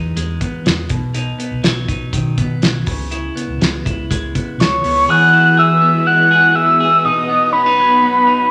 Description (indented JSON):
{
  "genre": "jangly indie pop",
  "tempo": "122 BPM",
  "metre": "4/4",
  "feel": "straight",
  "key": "unclear",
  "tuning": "A4 = 440 Hz",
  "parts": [
    { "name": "clean electric guitar", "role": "arpeggios", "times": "0.0-8.5 s", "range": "B2 to G#4", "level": "-23 LUFS", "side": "equal", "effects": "none" },
    { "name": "vintage muted fingered electric bass", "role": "bass", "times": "0.0-5.0 s", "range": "B1 to E3", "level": "-25 LUFS", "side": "equal", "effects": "none" },
    { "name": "cloth-damped thuddy drum kit", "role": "drums", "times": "0.2-5.0 s", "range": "hi-hat, kick drum, snare drum", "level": "-21 LUFS", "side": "equal", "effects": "none" },
    { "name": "soft octave-layered synth lead", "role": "melody", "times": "4.6-8.5 s", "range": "B5 to F#6", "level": "-13 LUFS", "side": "equal", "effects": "chorus" },
    { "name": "phased string machine", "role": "sustained chords", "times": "5.1-8.5 s", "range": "E3 to F#4", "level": "-23 LUFS", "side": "equal", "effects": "ensemble chorus, phaser" }
  ],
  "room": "wet large studio reverb, RT60 1.1 s",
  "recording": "none",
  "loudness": "-14 LUFS",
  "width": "mono",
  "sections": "0.0-5.1 A section; 5.1-8.5 B section",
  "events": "none",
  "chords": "0.0 Emaj7; 0.9 B; 2.9 C#m7; 5.1 Eadd9; 7.0 B"
}